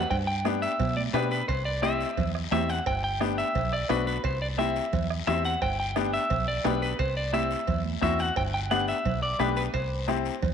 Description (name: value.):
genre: latin, cumbia.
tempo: 174 BPM.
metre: 4/4.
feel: straight.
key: G major.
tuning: A4 = 442 Hz.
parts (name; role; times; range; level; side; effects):
clean electric guitar; melody; 0.0-10.5 s; B4 to G5; -29 LUFS; equal; spring reverb, slapback echo.
fingered electric bass; bass; 0.0-10.5 s; G1 to B2; -31 LUFS; equal; none.
bombo; percussion; 0.1-10.5 s; none; -35 LUFS; right 4 dB; none.
cowbell and timbales; percussion; 0.1-10.5 s; none; -37 LUFS; right 12 dB; none.
guiro; percussion; 0.1-10.5 s; none; -42 LUFS; left 11 dB; none.
bright upright piano; accompaniment; 0.4-10.3 s; B3 to G4; -31 LUFS; left 13 dB; none.
congas; percussion; 0.5-10.5 s; none; -36 LUFS; right 14 dB; none.
room: light reverb, studio ambience.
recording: 1960s-style stereo with parts hard left and right.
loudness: -25 LUFS.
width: side -7 dB against mid.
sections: 0.1-10.5 A section.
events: none.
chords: 0.1 G; 1.5 C; 2.9 G; 4.2 C; 5.6 G; 7.0 C; 8.4 G; 9.7 C.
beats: | 0.11 0.45 0.80 1.14 | 1.49 1.83 2.18 2.52 | 2.86 3.21 3.55 3.90 | 4.24 4.58 4.93 5.27 | 5.62 5.96 6.30 6.65 | 6.99 7.33 7.68 8.02 | 8.37 8.71 9.05 9.40 | 9.74 10.08 10.43.